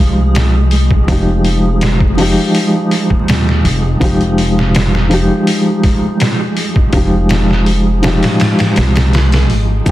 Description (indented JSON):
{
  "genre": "trip hop",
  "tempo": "82 BPM",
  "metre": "4/4",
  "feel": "straight",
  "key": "F minor",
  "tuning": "A4 = 436 Hz",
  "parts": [
    { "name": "felt-muted upright piano", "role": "accompaniment", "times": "0.0-9.9 s", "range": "F3 to G4", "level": "-14 LUFS", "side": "equal", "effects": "tremolo, low-pass filter, tape echo" },
    { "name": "upright bass", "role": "bass", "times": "0.0-9.9 s", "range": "F1 to Eb2", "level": "-14 LUFS", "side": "equal", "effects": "none" },
    { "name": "flickering grainy texture", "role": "texture", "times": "0.0-9.9 s", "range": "Ab3 to F4", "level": "-24 LUFS", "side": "right 2 dB", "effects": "built-in reverb" },
    { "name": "trip hop sampler-style drum kit", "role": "drums", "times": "0.3-9.9 s", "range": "hi-hat, kick drum, snare drum", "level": "-15 LUFS", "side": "equal", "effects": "none" },
    { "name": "maracas", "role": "percussion", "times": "9.9 s", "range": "none", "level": "-30 LUFS", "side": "right 5 dB", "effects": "none" }
  ],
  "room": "light reverb, small room ambience",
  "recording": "dense, heavily limited modern master, vinyl crackle",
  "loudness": "-10 LUFS",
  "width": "side -15 dB against mid",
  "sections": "0.0-9.9 A section",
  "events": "kick drops out 8.4-9.9",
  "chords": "0.0 Fm9",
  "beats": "0.35 | 1.09 1.82 2.55 3.28 | 4.01 4.75 5.48 6.21 | 6.94 7.67 8.40 9.13 | 9.87"
}